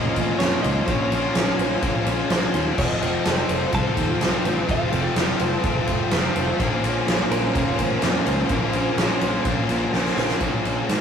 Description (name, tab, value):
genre	rock, shoegaze and dream pop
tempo	126 BPM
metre	4/4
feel	straight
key	Bb harmonic minor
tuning	A4 = 440 Hz
part	direct-recorded clean electric guitar	melody	0.0-9.9 s	Bb4 to A5	-31 LUFS	right 1 dB	none
part	phased string machine	sustained chords	0.0-11.0 s	Db4 to Bb5	-31 LUFS	right 2 dB	ensemble chorus, phaser
part	fingerpicked twelve-string acoustic guitar	arpeggios	0.0-11.0 s	Ab3 to C5	-31 LUFS	right 4 dB	none
part	biting overdriven guitar	riff	0.0-11.0 s	F2 to F4	-24 LUFS	left 4 dB	none
part	crunchy overdriven guitar	riff	0.0-11.0 s	F2 to F4	-32 LUFS	right 4 dB	none
part	picked electric bass	bass	0.0-11.0 s	F1 to Ab2	-29 LUFS	right 1 dB	none
part	huge arena drum kit	drums	0.2-11.0 s	crash cymbal, kick drum, ride cymbal, snare drum	-24 LUFS	equal	none
room	wet stone room reverb, RT60 1.2 s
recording	rough rehearsal-room recording, warm saturation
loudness	-19 LUFS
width	side -7 dB against mid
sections	0.0-10.4 A section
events	drum fill 9.9-10.4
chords	0.0 Bbmadd9; 2.8 F; 6.6 Bbmadd9; 10.4 Bbm7